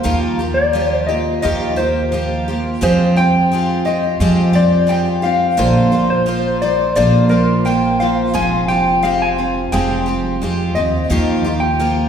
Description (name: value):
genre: acoustic folk duo or small band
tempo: 87 BPM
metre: 4/4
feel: straight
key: Eb major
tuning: A4 = 442 Hz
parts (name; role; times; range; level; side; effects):
- mellow electric guitar; melody; 0.0-12.1 s; Bb4 to Ab5; -18 LUFS; left 2 dB; harmonic tremolo
- picked twelve-string acoustic guitar; accompaniment; 0.0-12.1 s; Bb2 to C5; -18 LUFS; right 1 dB; none
- upright bass; bass; 0.1-12.1 s; F1 to F2; -18 LUFS; right 1 dB; none
room: wet scoring stage reverb, RT60 2.0 s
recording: recorded in a church or concert hall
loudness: -13 LUFS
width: side -8 dB against mid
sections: 0.1-12.1 A section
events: none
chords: 0.1 Ebadd9; 2.8 Fmadd9; 5.6 Bbadd9; 8.3 Fmadd9; 11.1 Ebadd9